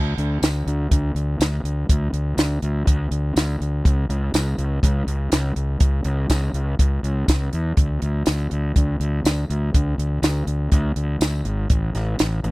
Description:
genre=indie rock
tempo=122 BPM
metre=4/4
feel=straight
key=unclear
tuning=A4 = 436 Hz
part: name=fuzz fingered electric bass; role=bass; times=0.0-12.5 s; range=G#1 to E2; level=-21 LUFS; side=equal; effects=overdrive
part: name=compact cocktail drum kit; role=drums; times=0.2-12.5 s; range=hi-hat, kick drum, snare drum, tambourine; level=-20 LUFS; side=equal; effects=none
room=little or no reverb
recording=dry, close 1970s-style studio recording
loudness=-19 LUFS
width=side -22 dB against mid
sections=0.0-12.5 A section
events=none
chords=none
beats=0.42 0.91 1.40 | 1.89 2.38 2.87 3.36 | 3.85 4.34 4.83 5.32 | 5.81 6.30 6.79 7.29 | 7.78 8.27 8.76 9.25 | 9.74 10.23 10.72 11.21 | 11.70 12.19

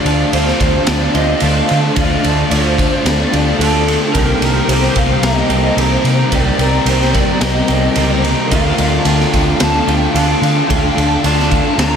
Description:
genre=rock, shoegaze and dream pop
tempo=110 BPM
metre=4/4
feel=straight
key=unclear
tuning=A4 = 440 Hz
part: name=lead guitar through a small cranked amp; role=melody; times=0.0-12.0 s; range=A4 to Bb5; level=-20 LUFS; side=equal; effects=overdrive, ensemble chorus, tape echo
part: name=picked twelve-string acoustic guitar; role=arpeggios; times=0.0-12.0 s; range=F4 to Bb4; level=-21 LUFS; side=equal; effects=analog chorus, tape echo
part: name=direct-recorded clean electric guitar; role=riff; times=0.0-12.0 s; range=C3 to G4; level=-20 LUFS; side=right 6 dB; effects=reverse reverb
part: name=thick fuzz guitar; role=riff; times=0.0-12.0 s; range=C3 to D4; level=-19 LUFS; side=left 8 dB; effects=distortion, lush chorus
part: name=vintage muted fingered electric bass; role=bass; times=0.0-12.0 s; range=C2 to D3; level=-17 LUFS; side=equal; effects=none
part: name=raw garage drum kit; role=drums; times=0.1-11.9 s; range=kick drum, ride cymbal, snare drum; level=-18 LUFS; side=right 1 dB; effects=none
room=wet huge ambient reverb, RT60 7.3 s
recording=dreamy mix soaked in reverb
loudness=-11 LUFS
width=side -7 dB against mid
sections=0.0-12.0 A section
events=none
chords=0.0 Dm; 4.1 Cm7; 8.5 Dm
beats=0.33 0.87 1.42 | 1.96 2.51 3.06 3.60 | 4.15 4.69 5.24 5.79 | 6.33 6.88 7.42 7.97 | 8.52 9.06 9.61 10.15 | 10.70 11.25 11.79

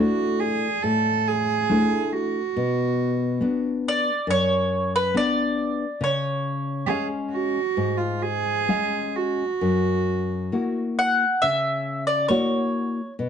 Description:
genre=fado-style ballad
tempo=68 BPM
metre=4/4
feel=uneven beats, rubato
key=F# minor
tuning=A4 = 440 Hz
part: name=mandolin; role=melody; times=0.0-13.1 s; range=B4 to F#5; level=-23 LUFS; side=equal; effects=plate reverb
part: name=rich cello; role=second line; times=0.0-10.8 s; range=E#4 to A4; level=-24 LUFS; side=right 7 dB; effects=none
part: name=nylon-string guitar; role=accompaniment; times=0.0-13.3 s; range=F#2 to E#5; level=-24 LUFS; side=left 3 dB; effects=none
room=moderate studio reverb, RT60 0.6 s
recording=dark, warm production, nothing above 10.5 kHz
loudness=-21 LUFS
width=side -8 dB against mid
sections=0.0-13.3 A section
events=none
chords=0.0 Dsus2; 2.6 Bm; 6.0 C#; 9.6 F#7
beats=0.84 1.69 | 2.56 3.42 4.27 5.14 | 6.02 6.88 7.76 8.69 | 9.62 10.53 11.42 12.30 | 13.18

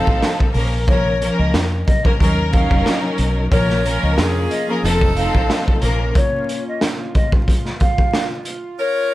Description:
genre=hip hop, boom-bap hip-hop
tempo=91 BPM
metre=4/4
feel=swing 55% on 16ths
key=Bb harmonic minor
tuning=A4 = 441 Hz
part: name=mellow hollow silver concert flute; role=melody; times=0.0-9.1 s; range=Db5 to F5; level=-23 LUFS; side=left 1 dB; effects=plate reverb
part: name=warm symphonic string section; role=accompaniment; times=0.0-6.1 s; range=F3 to Bb4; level=-21 LUFS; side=left 1 dB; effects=plate reverb
part: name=bright saxophone section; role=stabs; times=0.0-9.1 s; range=Db4 to Bb4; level=-25 LUFS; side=right 2 dB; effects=tape echo, plate reverb
part: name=deep dub fingered electric bass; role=bass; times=0.1-6.1 s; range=F1 to F2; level=-20 LUFS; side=equal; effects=none
part: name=raw garage drum kit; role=drums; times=0.1-8.6 s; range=hi-hat, kick drum, snare drum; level=-18 LUFS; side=equal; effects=none
part: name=warm analog pad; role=sustained chords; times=3.5-9.1 s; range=A3 to F4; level=-29 LUFS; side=equal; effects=chorus, plate reverb
room=light reverb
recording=vinyl crackle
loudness=-15 LUFS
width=side -16 dB against mid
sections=0.0-9.1 A section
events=none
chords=0.0 F7; 0.6 Bbm; 2.2 Ebm7; 3.5 Bbm; 4.8 F7; 5.8 Bbm; 7.5 N.C.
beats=0.22 | 0.88 1.54 2.20 2.86 | 3.52 4.18 4.84 5.50 | 6.15 6.81 7.47 8.13 | 8.79

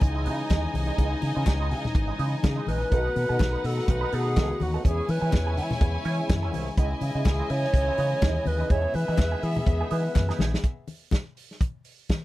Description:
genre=disco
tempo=124 BPM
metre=4/4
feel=swing 56% on 16ths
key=E major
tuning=A4 = 438 Hz
part: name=alto flute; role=melody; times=0.0-10.4 s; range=D#4 to C#5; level=-30 LUFS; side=equal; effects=none
part: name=warm studio violin section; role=second line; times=0.0-10.6 s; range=B3 to G#5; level=-34 LUFS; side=left 2 dB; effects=none
part: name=mellow electric guitar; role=accompaniment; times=0.0-10.6 s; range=E3 to B4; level=-36 LUFS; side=right 8 dB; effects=wah, analog chorus
part: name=mellow French horn section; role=sustained chords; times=0.0-10.6 s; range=C#3 to F#4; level=-36 LUFS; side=left 2 dB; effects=none
part: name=fingered electric bass with an envelope filter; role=bass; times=0.0-10.5 s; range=G#1 to E3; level=-27 LUFS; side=equal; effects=none
part: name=warm soul drum kit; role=drums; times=0.0-12.2 s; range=hi-hat, kick drum, snare drum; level=-24 LUFS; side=equal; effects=none
part: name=congas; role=percussion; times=0.0-12.2 s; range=none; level=-33 LUFS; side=left 4 dB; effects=none
part: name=group handclap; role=percussion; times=0.5-10.3 s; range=none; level=-41 LUFS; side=left 6 dB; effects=none
room=little or no reverb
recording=none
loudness=-23 LUFS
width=side -16 dB against mid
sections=0.0-10.6 A section; 10.6-12.2 B section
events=alto flute solo 0.0-10.6; drum fill 10.2-10.6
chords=0.0 C#madd9; 2.9 B7; 4.8 E6; 6.8 C#madd9; 8.7 Emaj7; 10.6 N.C.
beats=0.02 0.50 | 0.99 1.47 1.95 2.44 | 2.92 3.40 3.88 4.37 | 4.85 5.33 5.81 6.29 | 6.78 7.26 7.74 8.22 | 8.71 9.19 9.67 10.16 | 10.64 11.12 11.61 12.10

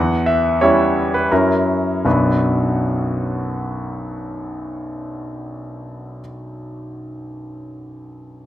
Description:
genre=classical-period piano sonatina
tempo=83 BPM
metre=3/4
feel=rubato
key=B minor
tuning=A4 = 440 Hz
part: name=clear concert grand piano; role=solo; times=0.0-8.5 s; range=B1 to F#5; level=-18 LUFS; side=equal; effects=none
room=moderate recital hall reverb, RT60 1.6 s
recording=close, detailed microphones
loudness=-16 LUFS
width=side -12 dB against mid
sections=0.0-2.1 A section; 2.1-6.4 B section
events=slowing down 0.0-2.1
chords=0.0 C#dim/E; 1.3 F#7; 2.1 Bm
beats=0.61 1.31 | 2.06 2.78 3.51 | 4.23 4.95 5.67

